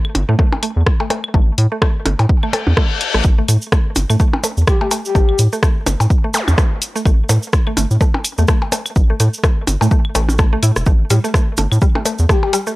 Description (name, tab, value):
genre	minimal techno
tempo	126 BPM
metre	4/4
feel	swing 57% on 16ths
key	unclear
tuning	A4 = 440 Hz
part	claves and percussion blips	percussion	0.0-12.6 s	none	-22 LUFS	left 1 dB	none
part	punchy analog drum machine	drums	0.1-12.6 s	hi-hat, rim click	-20 LUFS	equal	overdrive
part	rubbery square bass	bass	0.2-12.3 s	E1 to A2	-15 LUFS	equal	sidechain pumping
part	mallet-like synth pluck	riff	0.3-12.7 s	G3 to A4	-24 LUFS	equal	chorus, phaser, sidechain pumping, analog delay
part	electronic kick drum	drums	0.4-12.4 s	none	-14 LUFS	equal	overdrive
part	reverse cymbal and zap	sound effects	2.5-3.2, 6.3-6.5 s	none	-22 LUFS	left 3 dB	none
part	cabasa	percussion	3.2-12.7 s	none	-26 LUFS	right 3 dB	none
part	breathy flute-like synth lead	melody	4.7-5.4, 12.3-12.5 s	G4	-20 LUFS	left 5 dB	wide subtle chorus, analog delay
room	little or no reverb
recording	dry, gritty hardware recording, transformer saturation, cassette tape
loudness	-13 LUFS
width	side -19 dB against mid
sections	0.0-12.8 A section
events	reverse cymbal 2.5-3.2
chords	0.0 A5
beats	0.39 0.86 | 1.34 1.82 2.29 2.77 | 3.25 3.72 4.20 4.67 | 5.15 5.63 6.10 6.58 | 7.06 7.53 8.01 8.48 | 8.96 9.44 9.91 10.39 | 10.87 11.34 11.82 12.29